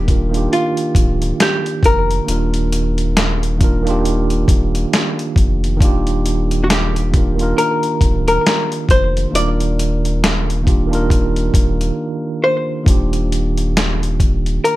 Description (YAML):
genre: lo-fi hip hop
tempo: 68 BPM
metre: 4/4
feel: swing 58% on 16ths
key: Eb major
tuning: A4 = 440 Hz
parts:
  - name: archtop guitar, miked and amplified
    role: melody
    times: 0.0-14.8 s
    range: F4 to D5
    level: -19 LUFS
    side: left 1 dB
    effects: low-pass filter, slapback echo, plate reverb
  - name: tine electric piano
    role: accompaniment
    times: 0.0-14.8 s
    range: Eb3 to Bb4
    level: -20 LUFS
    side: right 2 dB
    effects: medium stereo tremolo, low-pass filter, plate reverb
  - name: warm sub bass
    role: bass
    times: 0.0-14.6 s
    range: D1 to F1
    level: -19 LUFS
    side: equal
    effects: none
  - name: dusty soul sampler-style drum kit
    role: drums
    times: 0.1-14.8 s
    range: hi-hat, kick drum, snare drum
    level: -16 LUFS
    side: equal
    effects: none
room: light reverb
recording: none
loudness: -14 LUFS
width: side -16 dB against mid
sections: 0.0-12.9 A section; 12.9-14.8 B section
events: break 12.0-12.9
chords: 0.0 Ebmaj9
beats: 0.51 1.40 | 2.28 3.16 4.04 4.92 | 5.81 6.69 7.57 8.46 | 9.34 10.22 11.10 11.98 | 12.87 13.75 14.63